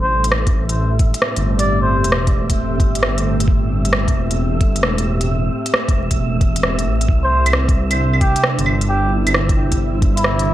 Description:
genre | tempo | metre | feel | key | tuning
future garage | 133 BPM | 4/4 | swing 66% on 16ths | A minor | A4 = 440 Hz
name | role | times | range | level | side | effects
trumpet with cup mute | melody | 0.0-2.3, 7.2-10.5 s | E4 to D5 | -22 LUFS | equal | analog delay
ethereal airy pad | sustained chords | 0.0-10.5 s | A2 to C5 | -24 LUFS | right 1 dB | ensemble chorus, built-in reverb, vintage 12-bit sampler grit, sidechain pumping
dark detuned saw bass | bass | 0.0-10.5 s | E1 to C2 | -19 LUFS | equal | sidechain pumping
wind-like tuned noise texture | texture | 0.3-10.5 s | E5 | -30 LUFS | right 4 dB | built-in reverb
organic electronic drum kit | drums | 0.2-10.5 s | claves, hi-hat, rim click | -20 LUFS | equal | none
electronic kick drum | drums | 0.5-10.1 s | none | -16 LUFS | equal | overdrive
room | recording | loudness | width
light reverb | vinyl crackle | -14 LUFS | side -13 dB against mid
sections
0.0-10.5 A section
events
none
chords
0.0 Am7; 7.1 C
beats
0.32 0.77 1.22 | 1.67 2.12 2.57 3.02 | 3.48 3.93 4.38 4.83 | 5.28 5.73 6.18 6.63 | 7.08 7.54 7.99 8.44 | 8.89 9.34 9.79 10.24

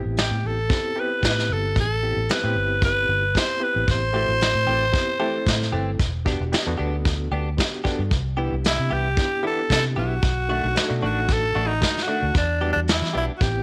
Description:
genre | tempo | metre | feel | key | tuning
straight-eighth soul blues | 113 BPM | 4/4 | swing 54% on 16ths | E minor | A4 = 440 Hz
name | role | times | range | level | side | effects
overdriven reed electric piano | accompaniment | 0.0-13.6 s | G3 to A4 | -33 LUFS | equal | fast tremolo
vintage muted fingered electric bass | bass | 0.1-13.6 s | E1 to E3 | -28 LUFS | equal | none
growling tenor saxophone | melody | 0.2-13.6 s | D4 to C5 | -26 LUFS | equal | none
vintage brush drum kit | drums | 0.2-13.5 s | hi-hat, kick drum, snare drum | -25 LUFS | equal | none
direct-recorded clean electric guitar | stabs | 4.1-13.3 s | D#3 to G4 | -33 LUFS | equal | analog chorus
room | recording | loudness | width
light reverb, small room ambience | none | -22 LUFS | mono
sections
0.0-13.6 A section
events
none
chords
0.0 Am7; 6.0 Em7; 8.1 Cmaj7; 10.2 B7#9; 12.3 Em7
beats
0.17 0.70 1.23 | 1.76 2.29 2.82 3.35 | 3.88 4.41 4.94 5.47 | 6.00 6.53 7.05 7.58 | 8.11 8.64 9.17 9.70 | 10.23 10.76 11.29 11.82 | 12.35 12.88 13.41

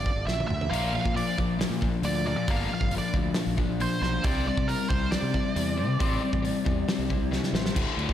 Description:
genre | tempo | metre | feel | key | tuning
quiet-loud alternative rock | 136 BPM | 4/4 | straight | unclear | A4 = 440 Hz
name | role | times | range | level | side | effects
nasal lead guitar with a parked wah | melody | 0.0-7.3 s | Bb4 to F5 | -32 LUFS | right 3 dB | overdrive, tape echo
fuzz fingered electric bass | bass | 0.0-8.1 s | D1 to C3 | -31 LUFS | equal | overdrive
loose indie drum kit | drums | 0.1-8.1 s | crash cymbal, hi-hat, kick drum, snare drum, toms | -29 LUFS | equal | none
electric guitar through a small old amp | arpeggios | 0.7-8.1 s | D2 to C5 | -35 LUFS | right 1 dB | lush chorus, tape echo
high-gain distorted guitar | riff | 0.7-8.1 s | D2 to C4 | -30 LUFS | left 7 dB | distortion
room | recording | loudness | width
moderate lush hall reverb, RT60 1.9 s, studio ambience | big arena sound | -24 LUFS | side -11 dB against mid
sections
0.0-7.8 A section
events
drum fill 0.3-0.7, 7.3-7.8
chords
0.3 N.C.; 0.5 Dsus2; 0.7 Bb; 4.2 Cadd9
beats
0.28 | 0.72 1.16 1.60 2.04 | 2.48 2.92 3.36 3.80 | 4.24 4.68 5.12 5.56 | 6.00 6.44 6.88 7.32 | 7.76

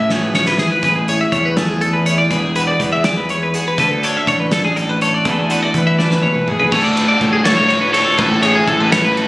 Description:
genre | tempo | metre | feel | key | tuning
math rock and midwest emo | 82 BPM (dotted quarters) | 6/8 | straight | A major | A4 = 440 Hz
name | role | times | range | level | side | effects
clean electric guitar | accompaniment | 0.0-6.7 s | E2 to A4 | -20 LUFS | right 1 dB | spring reverb
twelve-string electric guitar | arpeggios | 0.0-9.3 s | G#4 to E5 | -17 LUFS | left 1 dB | none
fuzz fingered electric bass | bass | 0.0-9.3 s | E1 to E3 | -20 LUFS | equal | overdrive
loose indie drum kit | drums | 0.1-9.3 s | crash cymbal, hi-hat, kick drum, ride cymbal, snare drum, toms | -21 LUFS | equal | none
growling trumpet | melody | 5.8-9.3 s | G#4 to C#5 | -19 LUFS | equal | none
biting overdriven guitar | riff | 6.7-9.3 s | A2 to F#4 | -20 LUFS | equal | none
room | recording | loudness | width
light reverb | recorded on a phone in the room, studio reverb, compression | -13 LUFS | side -19 dB against mid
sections
0.0-6.7 A section; 6.7-9.3 B section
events
drum fill 0.1-0.8, 6.0-6.7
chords
0.0 Amaj9; 2.3 E9; 3.8 D5; 5.3 E9sus4; 6.7 Dmaj7/A; 8.2 Amaj9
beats
0.09 | 0.83 1.57 | 2.31 3.04 | 3.78 4.52 | 5.25 5.99 | 6.72 7.46 | 8.19 8.92

